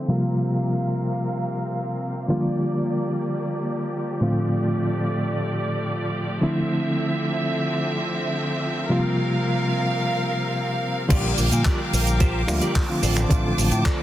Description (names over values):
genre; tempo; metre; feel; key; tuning
nu-disco, nu disco; 109 BPM; 4/4; straight; unclear; A4 = 440 Hz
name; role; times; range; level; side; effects
reed electric piano; accompaniment; 0.0-14.0 s; A2 to F4; -24 LUFS; equal; fast tremolo, sidechain pumping, digital delay
bright studio string section; sustained chords; 0.0-14.0 s; C3 to D6; -27 LUFS; equal; sidechain pumping
clean electric guitar; riff; 11.1-14.0 s; F4 to D5; -31 LUFS; right 2 dB; ensemble chorus, digital delay
picked electric bass with an envelope filter; bass; 11.1-13.8 s; A1 to Bb2; -23 LUFS; equal; none
electronic kick drum; drums; 11.1-14.0 s; none; -21 LUFS; equal; none
tight funk drum kit; drums; 11.1-14.0 s; cabasa, crash cymbal, finger snaps, handclaps, hi-hat; -27 LUFS; right 1 dB; none
room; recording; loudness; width
light reverb, studio ambience; dense, heavily limited modern master, low-pass filter; -21 LUFS; side -13 dB against mid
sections
0.0-11.1 A section; 11.1-14.0 B section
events
filter sweep 0.0-11.1; drop 11.1-14.0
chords
0.1 C7sus4; 2.3 Bb6; 4.2 F6/A; 6.4 Dm9; 8.9 C7sus4; 11.1 Bb6; 13.0 F6/A